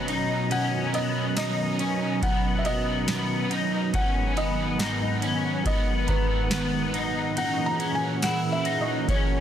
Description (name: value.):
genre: dream pop.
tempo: 70 BPM.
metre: 4/4.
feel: straight.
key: B major.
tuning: A4 = 439 Hz.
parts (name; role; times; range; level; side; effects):
felt-muted upright piano; melody; 0.0-9.4 s; B4 to A#5; -32 LUFS; right 1 dB; digital delay.
overdriven semi-hollow guitar; accompaniment; 0.0-9.4 s; G#2 to B4; -32 LUFS; right 5 dB; harmonic tremolo, analog chorus.
lush unison pad; sustained chords; 0.0-9.4 s; G#2 to A#5; -28 LUFS; right 1 dB; chorus.
electric guitar at the edge of break-up; arpeggios; 0.0-9.4 s; B3 to E4; -30 LUFS; left 5 dB; ensemble chorus, digital delay.
booming analog drum machine; drums; 0.1-9.3 s; kick drum, ride cymbal, snare drum, tambourine; -30 LUFS; equal; none.
worn celesta; texture; 4.3-9.4 s; G#5 to F#6; -43 LUFS; right 1 dB; none.
room: light reverb.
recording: dense, heavily limited modern master.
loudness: -23 LUFS.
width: side -10 dB against mid.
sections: 0.0-9.4 A section.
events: none.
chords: 0.0 Bmaj7; 3.9 G#m7; 7.4 F#7/A#.